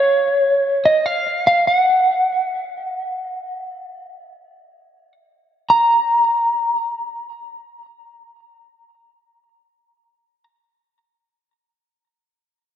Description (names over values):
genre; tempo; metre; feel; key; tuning
pop; free time; none; none; Bb minor; A4 = 440 Hz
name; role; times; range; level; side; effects
lightly driven lead guitar; melody; 0.0-10.4 s; Db5 to Bb5; -16 LUFS; equal; tape echo
room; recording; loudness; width
wet lush hall reverb, RT60 2.4 s; dark, warm production; -15 LUFS; side -10 dB against mid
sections
0.0-5.7 A section; 5.7-10.0 B section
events
slowing down 0.0-5.7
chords
none